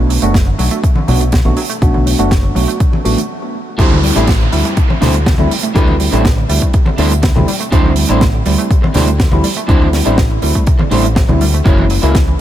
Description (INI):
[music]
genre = nu-disco, nu disco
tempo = 122 BPM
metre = 4/4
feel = straight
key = D mixolydian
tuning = A4 = 440 Hz
[part]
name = tine electric piano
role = accompaniment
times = 0.0-12.2 s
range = G3 to F#4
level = -17 LUFS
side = equal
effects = phaser, analog delay
[part]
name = analog pluck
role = arpeggios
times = 0.0-12.3 s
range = B2 to A#3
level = -23 LUFS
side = right 2 dB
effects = chorus, sidechain pumping, analog delay
[part]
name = fingered electric bass with an envelope filter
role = bass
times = 0.0-12.3 s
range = F#1 to D2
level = -14 LUFS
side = equal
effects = none
[part]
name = tight funk drum kit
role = drums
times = 0.1-12.3 s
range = hi-hat, snare drum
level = -21 LUFS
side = right 3 dB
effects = small room reverb
[part]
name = electronic kick drum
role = drums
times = 0.3-12.2 s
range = none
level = -13 LUFS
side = equal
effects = overdrive, small room reverb
[part]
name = congas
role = percussion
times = 1.0-11.9 s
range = none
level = -21 LUFS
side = left 2 dB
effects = none
[part]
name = electric guitar at the edge of break-up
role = riff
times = 3.8-12.3 s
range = D4 to C#5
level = -21 LUFS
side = right 2 dB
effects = lush chorus, analog delay
[part]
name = downlifter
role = sound effects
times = 3.8-7.7 s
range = none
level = -24 LUFS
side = equal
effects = none
[sound]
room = light reverb, studio ambience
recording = none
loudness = -10 LUFS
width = side -12 dB against mid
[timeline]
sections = 0.0-3.8 A section; 3.8-12.4 B section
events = stop 3.3-3.8; drop 3.8-12.4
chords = 0.0 Bm7; 3.8 D7sus4; 11.7 F#7